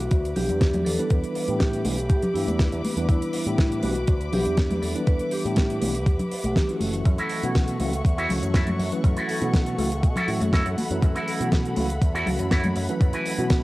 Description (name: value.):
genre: nu-disco, nu disco.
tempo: 121 BPM.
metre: 4/4.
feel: straight.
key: E dorian.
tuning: A4 = 440 Hz.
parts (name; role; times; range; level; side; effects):
vibraphone with medium mallets; melody; 0.0-6.8 s; E4 to B4; -29 LUFS; equal; cassette tape, analog delay.
muted studio string section; sustained chords; 0.0-13.6 s; A4 to D6; -35 LUFS; left 1 dB; sidechain pumping, cassette tape.
picked electric bass with an envelope filter; bass; 0.0-13.6 s; F#1 to B2; -28 LUFS; equal; none.
damped 70s drum kit; drums; 0.0-13.6 s; hi-hat, snare drum; -30 LUFS; equal; studio reverb.
electronic kick drum; drums; 0.1-13.6 s; none; -21 LUFS; equal; overdrive, studio reverb.
mellow tine electric piano; accompaniment; 0.4-13.6 s; E3 to B4; -29 LUFS; equal; medium stereo tremolo, sidechain pumping, cassette tape.
congas; percussion; 0.4-12.7 s; none; -30 LUFS; left 1 dB; none.
electric guitar with an envelope filter; riff; 7.1-13.4 s; E4 to B4; -30 LUFS; right 1 dB; lush chorus, cassette tape.
room: light reverb, small room ambience.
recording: home recording on cassette.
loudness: -21 LUFS.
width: side -19 dB against mid.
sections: 0.0-13.6 A section.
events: none.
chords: 0.0 Em7; 6.8 F#m7.